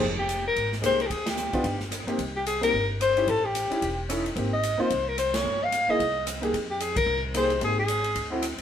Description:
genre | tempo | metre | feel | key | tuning
jazz, small-group swing and bop | 221 BPM | 4/4 | swing 59% on 8ths | F minor | A4 = 444 Hz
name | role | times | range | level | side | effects
upright bass | bass | 0.0-8.6 s | E1 to F2 | -33 LUFS | equal | none
swinging big-band drum kit | drums | 0.0-8.6 s | hi-hat, kick drum, ride cymbal, rim click, snare drum | -33 LUFS | equal | none
mellow soprano saxophone | melody | 0.2-8.3 s | G4 to F5 | -25 LUFS | left 2 dB | none
clear concert grand piano | accompaniment | 0.8-8.4 s | Ab3 to A4 | -29 LUFS | right 1 dB | none
room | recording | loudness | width
moderate stone room reverb, RT60 1.0 s | band playing live in one room | -23 LUFS | side -9 dB against mid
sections
0.0-8.6 A section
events
band accent 1.2, 5.3, 6.9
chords
0.0 Fm11; 1.1 G7b9b13/D; 1.6 Gmadd11; 2.2 Cm7; 3.3 A7#11; 4.4 Abmaj9; 5.4 Gm7b5; 6.0 Cm7; 6.5 Fm11

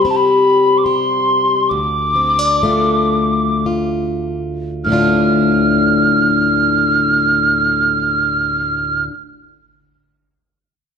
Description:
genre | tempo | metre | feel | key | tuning
celtic folk, Celtic slow air | 48-77 BPM | 3/4 | rubato | D minor | A4 = 440 Hz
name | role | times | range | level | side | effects
mellow hollow tin whistle | melody | 0.0-9.0 s | A5 to F6 | -15 LUFS | right 2 dB | none
picked plugged-in swing-style acoustic guitar | accompaniment | 0.0-9.2 s | D2 to G4 | -16 LUFS | left 3 dB | none
room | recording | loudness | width
moderate recital hall reverb, RT60 1.4 s | dark, warm production | -13 LUFS | side -6 dB against mid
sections
0.0-4.8 A section; 4.8-8.4 B section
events
slowing down 0.0-4.8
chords
0.0 C5; 1.7 Dm

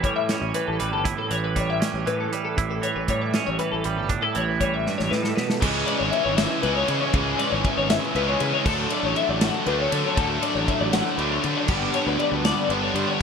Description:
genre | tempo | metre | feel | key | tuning
math rock and midwest emo | 79 BPM (dotted quarters) | 6/8 | straight | unclear | A4 = 440 Hz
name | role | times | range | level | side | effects
twangy electric guitar | accompaniment | 0.0-5.6 s | G2 to E4 | -26 LUFS | right 8 dB | lush chorus
twelve-string electric guitar | arpeggios | 0.0-13.2 s | G4 to F#5 | -26 LUFS | left 7 dB | analog chorus
fuzz fingered electric bass | bass | 0.0-13.0 s | G1 to D3 | -29 LUFS | equal | overdrive
modern studio drum kit | drums | 0.0-13.1 s | crash cymbal, hi-hat, kick drum, ride cymbal, snare drum | -27 LUFS | equal | gated reverb
cranked stack guitar | riff | 5.6-13.2 s | G2 to D4 | -24 LUFS | equal | overdrive, lush chorus
room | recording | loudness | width
light reverb, small room ambience | bright 1980s-style digital production | -21 LUFS | side -6 dB against mid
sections
0.0-5.6 A section; 5.6-13.2 B section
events
drum fill 4.9-5.6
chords
0.0 A7; 5.6 C#m7; 8.7 Dmaj7; 11.7 G

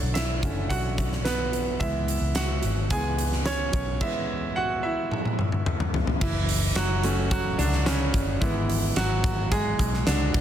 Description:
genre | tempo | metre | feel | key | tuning
piano-driven pop | 109 BPM | 4/4 | straight | F# minor | A4 = 440 Hz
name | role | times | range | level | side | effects
bright grand piano | accompaniment | 0.0-10.4 s | C#3 to G#5 | -28 LUFS | right 2 dB | none
vintage muted fingered electric bass | bass | 0.0-10.4 s | F#1 to C#2 | -27 LUFS | equal | none
huge arena drum kit | drums | 0.2-10.4 s | crash cymbal, hi-hat, kick drum, snare drum, toms | -27 LUFS | equal | none
room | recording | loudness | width
light reverb, small room ambience | dense, heavily limited modern master | -23 LUFS | side -10 dB against mid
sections
0.0-6.2 A section; 6.2-10.4 B section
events
grand piano solo 0.0-6.2, 6.2-10.4; drum fill 5.1-6.2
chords
0.0 Bm7; 1.8 C#m7; 6.2 F#m; 8.4 E/G#

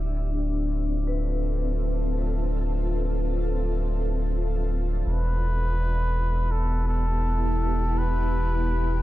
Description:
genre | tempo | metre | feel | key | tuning
ambient | free time | none | none | D dorian | A4 = 439 Hz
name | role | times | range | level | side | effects
granular cloud pad | sustained chords | 0.0-9.0 s | B3 to E5 | -32 LUFS | equal | built-in reverb
warm sub bass | bass | 0.0-9.0 s | D1 to E1 | -25 LUFS | equal | none
vibraphone with hard mallets | arpeggios | 0.3-5.1 s | D4 to B4 | -35 LUFS | left 6 dB | low-pass filter, dub echo
trumpet with cup mute | melody | 5.1-9.0 s | A4 to B4 | -31 LUFS | left 1 dB | dub echo
room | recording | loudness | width
little or no reverb | echo-heavy mix | -23 LUFS | side -16 dB against mid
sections
0.0-9.0 A section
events
filter sweep on vibraphone 0.0-9.0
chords
0.0 Dm9; 5.1 Em7

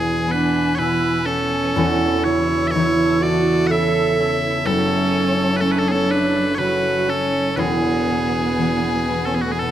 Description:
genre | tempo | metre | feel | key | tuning
celtic folk, Celtic slow air | 61 BPM | 3/4 | rubato | A major | A4 = 442 Hz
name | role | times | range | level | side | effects
loud bright bagpipes | melody | 0.0-9.7 s | F#4 to F#5 | -22 LUFS | left 1 dB | none
concert harp | accompaniment | 0.0-9.7 s | E1 to C#5 | -21 LUFS | left 1 dB | none
clear symphonic string section | sustained chords | 0.0-9.7 s | E3 to G#5 | -28 LUFS | left 2 dB | none
warm viola | second line | 0.3-9.6 s | A3 to A4 | -22 LUFS | right 4 dB | none
room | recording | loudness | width
moderate recital hall reverb, RT60 1.3 s | none | -16 LUFS | side -11 dB against mid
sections
0.0-9.7 A section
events
none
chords
0.0 E; 1.8 A/E; 4.7 F#m; 7.6 E

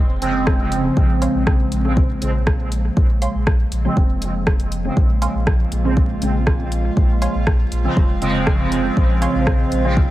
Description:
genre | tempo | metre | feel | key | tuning
dub techno | 120 BPM | 4/4 | straight | Bb minor | A4 = 438 Hz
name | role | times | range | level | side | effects
warbly tape-like pad | sustained chords | 0.0-10.1 s | Db3 to Bb3 | -28 LUFS | equal | chorus, built-in reverb, sidechain pumping
warm sub bass | bass | 0.0-10.1 s | F1 to Bb1 | -22 LUFS | equal | sidechain pumping
resonant sweep polysynth | stabs | 0.2-9.9 s | Db3 to C4 | -22 LUFS | right 1 dB | chorus, phaser, sidechain pumping, dub echo
punchy analog drum machine | drums | 0.2-9.8 s | hi-hat, rim click | -27 LUFS | equal | dub echo
electronic kick drum | drums | 0.5-10.1 s | none | -17 LUFS | equal | none
warbly dusty pluck | riff | 1.2-9.3 s | Db5 to C6 | -31 LUFS | right 2 dB | chorus, sidechain pumping, dub echo
metallic inharmonic drone | texture | 5.3-10.1 s | F4 | -31 LUFS | right 1 dB | chorus, built-in reverb, sidechain pumping
room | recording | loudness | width
digital ambience | vinyl crackle | -16 LUFS | side -15 dB against mid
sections
0.0-10.1 A section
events
none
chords
0.0 Bbm7

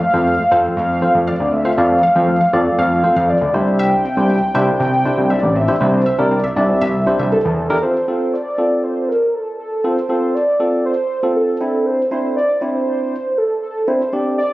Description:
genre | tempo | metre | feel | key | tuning
pop | 119 BPM | 4/4 | straight | F major | A4 = 439 Hz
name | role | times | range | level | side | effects
warm velvety synth lead | melody | 0.0-14.5 s | A4 to G5 | -17 LUFS | equal | chorus, digital delay
soft round pluck | arpeggios | 0.0-7.3 s | A3 to F5 | -25 LUFS | left 1 dB | chorus, digital delay
tine electric piano | accompaniment | 0.1-14.4 s | C4 to D5 | -19 LUFS | equal | none
fat analog bass | bass | 0.1-7.7 s | A1 to F2 | -18 LUFS | equal | none
room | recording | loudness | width
light reverb, digital ambience | recorded on a phone in the room, club reverb | -14 LUFS | side -18 dB against mid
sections
0.0-7.8 A section; 7.8-14.5 B section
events
none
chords
0.0 F; 3.5 Cadd9; 7.8 F; 11.6 Cadd9

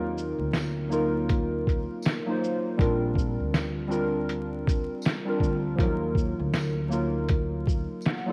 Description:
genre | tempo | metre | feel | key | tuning
lo-fi hip hop | 80 BPM | 4/4 | swing 58% on 16ths | unclear | A4 = 439 Hz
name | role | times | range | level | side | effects
warbly lo-fi synth keys | accompaniment | 0.0-8.3 s | F3 to Gb5 | -31 LUFS | equal | chorus, cassette tape
upright bass | bass | 0.0-7.8 s | Bb1 to Eb2 | -34 LUFS | equal | none
lo-fi sampler-style drum kit | drums | 0.2-8.3 s | hi-hat, kick drum, shaker, snare drum | -29 LUFS | equal | cassette tape
tambourine | percussion | 0.5-8.2 s | none | -51 LUFS | equal | none
room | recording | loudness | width
light reverb, digital ambience | home recording on cassette, vinyl crackle | -27 LUFS | mono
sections
0.0-8.3 A section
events
none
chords
0.0 Ebmadd9; 2.8 Bb6; 5.8 Ebmadd9

